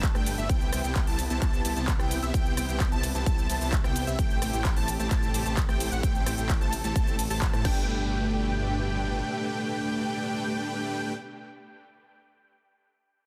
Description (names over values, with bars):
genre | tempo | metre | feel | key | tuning
EDM, festival progressive house | 130 BPM | 4/4 | straight | G major | A4 = 440 Hz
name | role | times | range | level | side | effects
lush unison pad | sustained chords | 0.0-11.1 s | B2 to A4 | -41 LUFS | equal | chorus, sidechain pumping
unison lead | arpeggios | 0.0-11.1 s | E5 to A5 | -37 LUFS | equal | ensemble chorus, sidechain pumping, dub echo
dense compressed supersaw | riff | 0.0-11.1 s | A3 to A5 | -35 LUFS | equal | sidechain pumping, dub echo
detuned saw bass | bass | 0.0-9.2 s | G1 to A2 | -34 LUFS | equal | sidechain pumping
big-room dance drum kit | drums | 0.0-7.7 s | cabasa, crash cymbal, handclaps, hi-hat, ride cymbal, rim click | -37 LUFS | equal | studio reverb
electronic kick drum | drums | 0.0-7.7 s | none | -28 LUFS | equal | studio reverb
room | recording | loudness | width
light reverb, digital ambience | dense, heavily limited modern master | -27 LUFS | mono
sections
0.0-7.9 A section; 7.9-11.6 B section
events
drop 0.0-7.9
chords
0.5 Cmaj7; 4.2 Am7; 7.6 Gadd9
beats
0.03 | 0.49 0.96 1.42 1.88 | 2.34 2.80 3.26 3.73 | 4.19 4.65 5.11 5.57 | 6.03 6.50 6.96 7.42 | 7.88 8.34 8.80 9.26 | 9.73 10.19 10.65 11.11